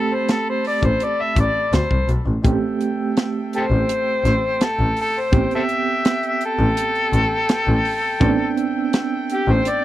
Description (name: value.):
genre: straight-eighth soul blues.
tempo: 83 BPM.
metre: 4/4.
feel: straight.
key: A minor.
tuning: A4 = 440 Hz.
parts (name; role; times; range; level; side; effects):
overdriven harmonica; melody; 0.0-9.8 s; G4 to E5; -20 LUFS; left 2 dB; none.
overdriven reed electric piano; accompaniment; 0.0-9.8 s; A3 to G4; -25 LUFS; right 6 dB; tremolo.
clear horn section; sustained chords; 0.0-9.8 s; A4 to B5; -31 LUFS; left 2 dB; none.
tight funk drum kit; drums; 0.3-9.8 s; hi-hat, kick drum, snare drum; -20 LUFS; equal; none.
bright double bass; bass; 0.8-9.6 s; A1 to D2; -20 LUFS; equal; none.
room: small room ambience.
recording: dry, close 1970s-style studio recording.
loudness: -17 LUFS.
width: side -14 dB against mid.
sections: 0.0-2.4 A section; 2.4-9.8 B section.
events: harmonica solo 2.4-9.8.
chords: 0.0 Am9.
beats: 0.28 1.00 1.73 | 2.44 3.17 3.89 4.61 | 5.33 6.05 6.77 7.49 | 8.21 8.93 9.65.